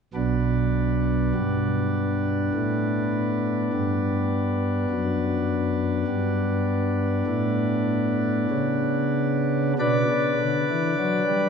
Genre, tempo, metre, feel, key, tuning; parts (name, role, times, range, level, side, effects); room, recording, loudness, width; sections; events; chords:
classical, chorale-style piece for pipe organ; 50 BPM; 4/4; rubato; B minor; A4 = 440 Hz
pipe organ, sparkling flutes; solo; 0.1-11.5 s; B1 to D5; -21 LUFS; equal
wet church reverb, RT60 3.3 s; minimal, uncompressed stereo recording; -22 LUFS; side -6 dB against mid
0.2-9.8 A section; 9.8-11.5 B section
0.2 Bm